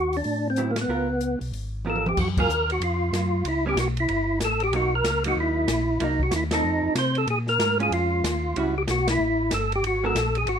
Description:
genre	soul jazz organ trio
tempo	188 BPM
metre	4/4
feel	swing 62% on 8ths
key	unclear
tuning	A4 = 440 Hz
part	percussive tonewheel organ	melody	0.0-10.6 s	Bb3 to C5	-24 LUFS	equal	slow rotary speaker, overdrive, chorus vibrato
part	mellow tonewheel organ	bass	0.0-10.6 s	G1 to C3	-28 LUFS	equal	overdrive, slow rotary speaker
part	open jazz drum kit	drums	0.1-10.6 s	crash cymbal, hi-hat, kick drum, ride cymbal, snare drum, toms	-30 LUFS	equal	none
part	vintage hollow-body jazz guitar	accompaniment	0.6-10.1 s	D3 to A#4	-30 LUFS	right 5 dB	none
room	light reverb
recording	minimal, uncompressed stereo recording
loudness	-22 LUFS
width	side -8 dB against mid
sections	0.0-2.2 A section; 2.2-10.6 B section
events	band accent 0.7, 2.3, 6.5, 9.0; drum fill 1.8-2.2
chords	0.0 D69; 0.9 C#6; 2.2 F#maj7; 3.4 A9; 4.7 Bmaj7; 6.0 Cm7b5; 6.6 F7; 7.3 A#m7; 8.6 A13; 9.8 G#m9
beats	0.25 0.57 | 0.89 1.21 1.53 1.85 | 2.17 2.49 2.81 3.12 | 3.44 3.76 4.08 4.40 | 4.72 5.04 5.36 5.68 | 6.00 6.32 6.64 6.96 | 7.28 7.59 7.91 8.23 | 8.55 8.87 9.19 9.51 | 9.83 10.15 10.46

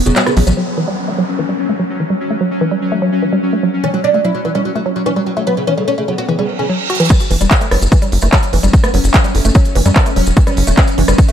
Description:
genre	psychedelic trance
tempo	147 BPM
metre	4/4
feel	straight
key	F# phrygian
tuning	A4 = 440 Hz
part	pulsing gated texture	sustained chords	0.0-11.3 s	F#3 to C#4	-21 LUFS	left 1 dB	chorus, built-in reverb, sidechain pumping
part	oud	melody	0.1-0.5, 3.8-6.6 s	C#3 to F#4	-18 LUFS	right 2 dB	phaser, sidechain pumping, tape echo
part	woody wave-folded pluck	riff	0.1-11.3 s	E3 to F#4	-18 LUFS	equal	chorus, auto-pan, cassette tape, sidechain pumping, tape echo
part	tight sequencer bass	bass	0.1-0.5, 7.3-11.1 s	E1 to F#2	-13 LUFS	equal	none
part	techno drum kit	drums	0.1-0.6, 6.9-11.3 s	crash cymbal, handclaps, hi-hat, rim click	-18 LUFS	right 1 dB	none
part	maracas	percussion	0.1-0.6, 7.1-11.3 s	none	-28 LUFS	left 2 dB	none
part	downlifter and reverse cymbal	sound effects	0.6-7.1 s	none	-25 LUFS	right 2 dB	none
part	formant-sweep wobble bass	second line	5.6-9.5 s	A3 to B3	-30 LUFS	right 3 dB	none
part	electronic kick drum	drums	7.1-11.3 s	none	-11 LUFS	equal	overdrive
room	light reverb, digital ambience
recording	none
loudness	-12 LUFS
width	side -9 dB against mid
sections	0.6-7.1 A section; 7.1-11.3 B section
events	kick drops out 0.2-0.6; filter sweep on synth arpeggio sound 0.6-7.1; reverse cymbal 6.5-7.1; drum fill 6.9; drop 7.1-11.3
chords	0.0 F#5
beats	0.16 | 0.57 0.98 1.39 1.80 | 2.20 2.61 3.02 3.43 | 3.84 4.24 4.65 5.06 | 5.47 5.88 6.29 6.69 | 7.10 7.51 7.92 8.33 | 8.73 9.14 9.55 9.96 | 10.37 10.78 11.18

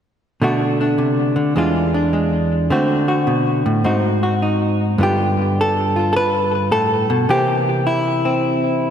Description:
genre	solo jazz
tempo	105 BPM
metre	4/4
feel	swing 67% on 8ths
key	G mixolydian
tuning	A4 = 439 Hz
part	hollow-body jazz guitar	solo	0.4-8.9 s	E2 to B4	-15 LUFS	equal	ping-pong delay
room	wet lush hall reverb, RT60 2.6 s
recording	dreamy mix soaked in reverb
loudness	-15 LUFS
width	side -8 dB against mid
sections	0.4-5.0 A section; 5.0-8.9 B section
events	none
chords	0.4 Bm7; 1.6 E7b9; 2.7 D7; 3.9 Ab7; 5.0 G7; 7.3 C7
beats	| 0.42 0.99 1.56 2.13 | 2.71 3.28 3.85 4.42 | 4.99 5.57 6.14 6.71 | 7.28 7.85 8.43

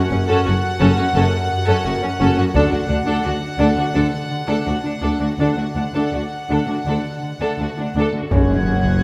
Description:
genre	cinematic, suspense film score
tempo	84 BPM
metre	4/4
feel	straight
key	unclear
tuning	A4 = 441 Hz
part	warm symphonic violin section	melody	0.0-9.0 s	F#5	-28 LUFS	equal	none
part	concert harp	riff	0.0-9.0 s	F#2 to D4	-27 LUFS	equal	none
part	rich studio violin section	second line	0.1-9.0 s	C#4 to A4	-28 LUFS	equal	none
part	warm studio viola section	accompaniment	0.1-9.0 s	C#4 to D4	-25 LUFS	equal	none
part	rich symphonic cello section	bass	0.1-9.0 s	D2 to F#2	-26 LUFS	equal	none
part	warm symphonic double bass section	bass	0.1-9.0 s	F#1 to D2	-27 LUFS	equal	none
part	taiko ensemble	drums	2.5-3.9, 8.3-9.0 s	none	-27 LUFS	equal	none
part	warm French horn section	sustained chords	8.3-8.6 s	G#3 to C#4	-24 LUFS	equal	none
part	timpani	percussion	8.3-9.0 s	F#2	-25 LUFS	equal	none
part	impact	sound effects	8.3-9.0 s	none	-28 LUFS	equal	none
part	dark studio violin section	texture	8.3-9.0 s	F#6 to G#6	-31 LUFS	equal	none
room	moderate scoring stage reverb, RT60 1.8 s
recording	none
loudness	-19 LUFS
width	mono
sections	0.0-8.3 A section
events	impact 8.3-9.0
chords	0.0 F#m; 2.5 D; 8.3 F#sus2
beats	0.46 1.15 1.85 | 2.54 3.24 3.94 4.66 | 5.39 6.12 6.85 7.58 | 8.31 9.03

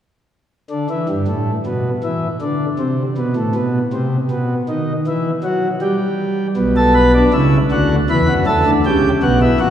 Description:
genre	classical, baroque-style 3-part fugue for pipe organ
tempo	79 BPM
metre	4/4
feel	straight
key	unclear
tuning	A4 = 439 Hz
part	pipe organ, principal chorus	solo	0.7-9.7 s	A#1 to B4	-14 LUFS	equal	none
room	wet church reverb, RT60 3.6 s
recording	heard from further back in the room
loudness	-14 LUFS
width	side -10 dB against mid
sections	0.5-9.7 A section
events	none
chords	0.5 N.C.; 6.6 Bm; 8.1 C#m7b5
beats	| 0.52 1.28 2.04 2.80 | 3.56 4.32 5.07 5.83 | 6.58 7.34 8.10 8.85 | 9.61

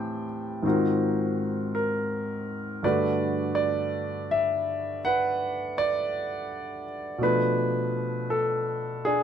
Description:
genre	jazz ballad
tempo	55 BPM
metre	4/4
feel	swing 68% on 8ths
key	G major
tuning	A4 = 442 Hz
part	clear concert grand piano	solo	0.0-9.2 s	G2 to A5	-25 LUFS	equal	none
room	light reverb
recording	close, detailed microphones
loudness	-25 LUFS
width	side -8 dB against mid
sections	0.0-9.2 A section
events	none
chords	0.0 Am7; 0.6 Ab13; 2.8 Gmaj9; 7.2 Bm7b5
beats	0.64 1.74 | 2.83 3.92 5.01 6.11 | 7.20 8.30

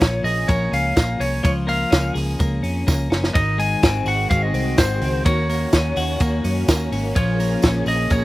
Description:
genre	jangly indie pop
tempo	126 BPM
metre	4/4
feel	straight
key	Eb dorian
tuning	A4 = 440 Hz
part	lightly driven lead guitar	melody	0.0-8.2 s	C5 to Ab5	-24 LUFS	equal	none
part	twelve-string electric guitar	arpeggios	0.0-8.2 s	Eb3 to Ab4	-24 LUFS	left 2 dB	none
part	vintage muted fingered electric bass	bass	0.0-8.2 s	Gb1 to Gb2	-23 LUFS	equal	none
part	compact cocktail drum kit	drums	0.0-8.2 s	hi-hat, kick drum, ride cymbal, snare drum	-20 LUFS	equal	none
part	tambourine	percussion	0.0-8.2 s	none	-38 LUFS	right 5 dB	none
part	string machine, violas	sustained chords	3.3-8.2 s	Eb3 to Ab4	-29 LUFS	equal	ensemble chorus
room	little or no reverb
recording	recorded outdoors, with no room sound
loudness	-17 LUFS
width	side -17 dB against mid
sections	0.0-8.2 A section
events	drum fill 2.9-3.4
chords	0.0 Bbm7; 1.4 Db6; 3.4 Ab7; 5.3 Ebm7; 7.2 Bbm7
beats	0.01 0.49 0.97 | 1.45 1.92 2.40 2.88 | 3.35 3.83 4.31 4.78 | 5.26 5.74 6.21 6.69 | 7.16 7.64 8.11

